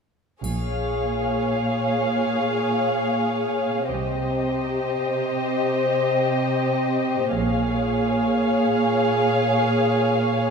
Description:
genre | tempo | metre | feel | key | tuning
cinematic, suspense film score | free time | none | none | Bb dorian | A4 = 440 Hz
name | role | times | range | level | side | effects
muted symphonic violin section | melody | 0.4-10.5 s | Eb5 to F5 | -28 LUFS | left 4 dB | none
muted symphonic violin section | second line | 0.4-10.5 s | G4 to Db5 | -23 LUFS | left 1 dB | none
muted chamber double bass section | bass | 0.4-8.2 s | Bb1 to C2 | -30 LUFS | right 1 dB | none
muted symphonic cello section | bass | 0.4-10.5 s | Bb2 to C3 | -25 LUFS | right 3 dB | none
triangle | percussion | 0.4-2.1 s | none | -44 LUFS | left 2 dB | none
room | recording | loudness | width
wet scoring stage reverb, RT60 2.1 s | minimal, uncompressed stereo recording | -20 LUFS | side -5 dB against mid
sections
0.4-10.5 A section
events
none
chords
0.4 Bbm7; 3.9 Cm; 7.3 Bbm7

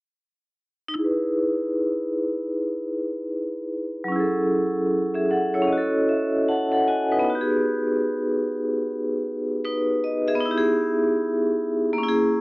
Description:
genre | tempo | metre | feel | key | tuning
hip hop | 76 BPM | 4/4 | swing 60% on 16ths | unclear | A4 = 440 Hz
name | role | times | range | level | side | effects
vibraphone with hard mallets | accompaniment | 0.9-12.4 s | F#3 to A5 | -21 LUFS | equal | low-pass filter
room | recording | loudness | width
light reverb | cassette tape | -21 LUFS | side -21 dB against mid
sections
1.0-12.4 A section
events
filter sweep on vibraphone 1.0-12.4; vibraphone fill 5.7-7.3, 12.0-12.4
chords
1.0 Emaj7/D#; 4.1 F#m9; 5.7 F#m13/C#; 7.3 B6; 10.4 Emaj7/B

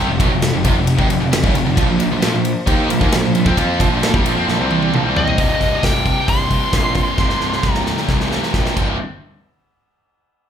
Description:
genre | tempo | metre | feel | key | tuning
heavy metal | 133 BPM | 4/4 | straight | C minor | A4 = 439 Hz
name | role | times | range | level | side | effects
rich studio string section | sustained chords | 0.0-5.3 s | F3 to C5 | -28 LUFS | left 2 dB | none
scooped high-gain guitar | riff | 0.0-9.0 s | C2 to F4 | -21 LUFS | left 6 dB | distortion
tight distorted guitar | riff | 0.0-9.0 s | C2 to F4 | -21 LUFS | right 7 dB | distortion
fuzz picked electric bass | bass | 0.0-9.0 s | C1 to F2 | -22 LUFS | equal | overdrive
big rock drum kit | drums | 0.2-8.9 s | crash cymbal, hi-hat, kick drum, ride cymbal, snare drum, toms | -18 LUFS | equal | none
high-gain lead guitar | melody | 5.2-8.5 s | Eb5 to C6 | -21 LUFS | equal | distortion
room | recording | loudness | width
moderate large studio reverb, RT60 0.8 s | band playing live in one room | -14 LUFS | side -9 dB against mid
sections
0.0-5.4 A section; 5.4-9.0 B section; 9.0-10.5 C section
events
drum fill 4.5-5.4, 7.2-9.0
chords
0.0 F5; 1.8 Bb5; 5.4 C5; 9.0 N.C.

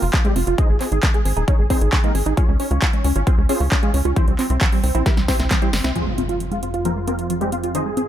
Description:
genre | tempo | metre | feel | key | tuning
uplifting trance | 134 BPM | 4/4 | straight | F minor | A4 = 440 Hz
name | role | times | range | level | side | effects
supersaw stab | melody | 0.0-8.0 s | G3 to Eb5 | -25 LUFS | equal | ensemble chorus, sidechain pumping, low-pass filter, ping-pong delay
tight sequenced synth | arpeggios | 0.0-8.0 s | Eb3 to F4 | -25 LUFS | right 2 dB | chorus, phaser, sidechain pumping, digital delay
tight sequencer bass | bass | 0.0-5.9 s | Eb1 to Db2 | -20 LUFS | equal | sidechain pumping
big-room dance drum kit | drums | 0.0-8.1 s | handclaps, hi-hat, snare drum | -26 LUFS | right 1 dB | sidechain pumping on hats
electronic kick drum | drums | 0.1-5.6 s | none | -18 LUFS | equal | none
lush unison pad | sustained chords | 6.5-8.1 s | F2 to Ab4 | -28 LUFS | right 2 dB | chorus, phaser, sidechain pumping
impact | sound effects | 6.0-7.7 s | none | -30 LUFS | equal | none
room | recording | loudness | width
little or no reverb | none | -16 LUFS | side -11 dB against mid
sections
0.0-6.0 A section; 6.0-8.1 B section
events
filter sweep on synth arpeggio sound 0.0-6.0, 6.0-8.1; drum fill 5.1-6.0; band accent 5.8; impact 6.0-7.7; filter sweep on supersaw synth 6.0-8.1; filter sweep on analog synth pad 6.0-8.1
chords
0.0 Fm; 0.6 Ab; 2.4 Db; 4.2 C; 6.0 Fm

